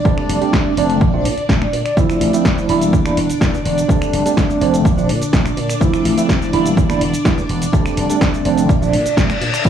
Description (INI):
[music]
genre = filtered disco house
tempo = 125 BPM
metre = 4/4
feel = straight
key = unclear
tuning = A4 = 440 Hz
[part]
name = tine electric piano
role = accompaniment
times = 0.0-9.7 s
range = F3 to E4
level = -18 LUFS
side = right 2 dB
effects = medium stereo tremolo, phaser, sidechain pumping
[part]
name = string machine, full ensemble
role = sustained chords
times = 0.0-9.7 s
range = D4 to G5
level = -22 LUFS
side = right 1 dB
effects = phaser, ensemble chorus, sidechain pumping
[part]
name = slap bass with an envelope filter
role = bass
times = 0.1-9.7 s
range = E1 to Bb2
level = -22 LUFS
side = equal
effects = tube saturation, sidechain pumping
[part]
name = electronic kick drum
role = drums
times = 0.1-9.7 s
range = none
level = -16 LUFS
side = equal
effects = overdrive
[part]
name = punchy analog drum machine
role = drums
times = 0.1-9.7 s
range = cabasa, crash cymbal, finger snaps, hi-hat, snare drum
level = -23 LUFS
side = equal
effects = sidechain pumping on hats, sidechain pumping on cymbals, sidechain pumping on perc
[part]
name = reverse cymbal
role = sound effects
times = 8.9-9.7 s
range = none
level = -22 LUFS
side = left 5 dB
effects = none
[part]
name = tambourine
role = percussion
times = 9.6-9.7 s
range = none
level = -35 LUFS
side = right 3 dB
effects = none
[sound]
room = digital ambience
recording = dry, gritty hardware recording, studio reverb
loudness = -13 LUFS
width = side -9 dB against mid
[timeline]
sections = 0.0-9.7 A section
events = reverse cymbal 8.9-9.7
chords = 0.1 F6; 1.0 Bbmaj9; 2.0 Dm9; 2.7 Em7b5; 3.9 F6; 4.9 Bbmaj9; 5.8 Dm9; 6.5 Em7b5; 7.7 F6; 8.7 Bbmaj9